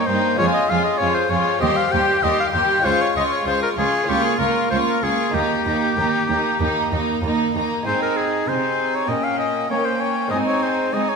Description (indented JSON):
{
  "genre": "classical, baroque-style concerto movement with solo episodes",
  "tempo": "98 BPM",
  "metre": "4/4",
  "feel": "straight",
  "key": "Ab major",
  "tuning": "A4 = 440 Hz",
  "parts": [
    { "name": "clear oboe", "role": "melody", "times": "0.0-11.2 s", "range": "G4 to G5", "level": "-21 LUFS", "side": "left 3 dB", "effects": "none" },
    { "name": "warm chamber violin section", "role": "melody", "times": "0.0-11.2 s", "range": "G5 to Db6", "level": "-28 LUFS", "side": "left 2 dB", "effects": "none" },
    { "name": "warm chamber violin section", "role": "second line", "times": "0.0-11.2 s", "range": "Db4 to G4", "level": "-24 LUFS", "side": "equal", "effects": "none" },
    { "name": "lute", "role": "accompaniment", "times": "0.0-11.2 s", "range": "Eb2 to Bb4", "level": "-30 LUFS", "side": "right 1 dB", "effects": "none" },
    { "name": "warm chamber viola section", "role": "accompaniment", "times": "0.0-11.0 s", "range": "G3 to C4", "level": "-26 LUFS", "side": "right 2 dB", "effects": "none" },
    { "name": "warm chamber cello section", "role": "bass", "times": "0.1-11.2 s", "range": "Db2 to Bb3", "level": "-27 LUFS", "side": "right 4 dB", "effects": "none" }
  ],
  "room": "wet scoring stage reverb, RT60 1.9 s",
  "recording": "minimal, uncompressed stereo recording",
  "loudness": "-17 LUFS",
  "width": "side -5 dB against mid",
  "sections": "0.0-7.9 A section; 7.9-11.2 A section",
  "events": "none",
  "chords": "0.4 Db/F; 1.6 Cm/Eb; 2.8 Db; 4.1 Bbm/Db; 5.3 Eb; 7.9 Ab; 9.1 Gdim/Bb; 10.3 Ab"
}